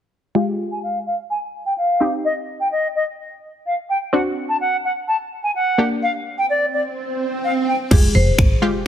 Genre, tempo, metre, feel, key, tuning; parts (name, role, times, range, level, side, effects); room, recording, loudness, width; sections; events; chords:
dance-pop; 127 BPM; 4/4; straight; F dorian; A4 = 440 Hz
wide unison pluck; accompaniment; 0.3-8.9 s; Ab3 to G4; -21 LUFS; left 1 dB; sidechain pumping, low-pass filter
silver concert flute; melody; 0.4-7.8 s; D5 to A5; -20 LUFS; equal; sidechain pumping, low-pass filter
swell and impact; sound effects; 6.5-8.9 s; -24 LUFS; right 2 dB
marimba with medium hard mallets; melody; 7.9-8.8 s; Ab4 to C5; -23 LUFS; left 3 dB
solid FM bass; bass; 7.9-8.6 s; F1 to Ab1; -16 LUFS; equal; sidechain pumping
pop drum kit; drums; 7.9-8.5 s; crash cymbal, finger snaps, kick drum; -15 LUFS; equal
light reverb; heavily compressed radio sound, multiband compression; -17 LUFS; side -10 dB against mid
0.4-7.9 A section
filter sweep 0.4-7.9; swell 6.5-7.9; impact 7.9-8.9
0.4 Fmadd9; 2.0 Cm; 4.1 D7; 5.8 Gm; 7.9 Fmadd9